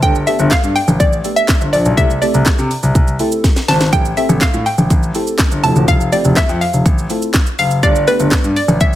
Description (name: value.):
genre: dance-pop.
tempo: 123 BPM.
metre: 4/4.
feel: straight.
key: unclear.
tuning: A4 = 440 Hz.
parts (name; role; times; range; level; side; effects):
hollow square pluck; melody; 0.0-9.0 s; B4 to A5; -17 LUFS; equal; chorus, tape echo.
deep mellow chord stab; accompaniment; 0.0-8.6 s; A3 to B4; -21 LUFS; right 1 dB; chorus, sidechain pumping.
warm grand piano; bass; 0.0-9.0 s; E1 to C3; -15 LUFS; left 1 dB; sidechain pumping.
house drum kit; drums; 0.0-9.0 s; handclaps, hi-hat, kick drum, shaker, snare drum; -15 LUFS; equal; none.
room: light reverb, digital ambience.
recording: none.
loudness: -11 LUFS.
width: side -13 dB against mid.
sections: 0.0-9.0 A section.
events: drum fill 3.4-3.9.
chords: 0.0 Gadd9; 2.0 C6; 3.9 Am7; 5.6 Fmaj7; 7.8 Gadd9.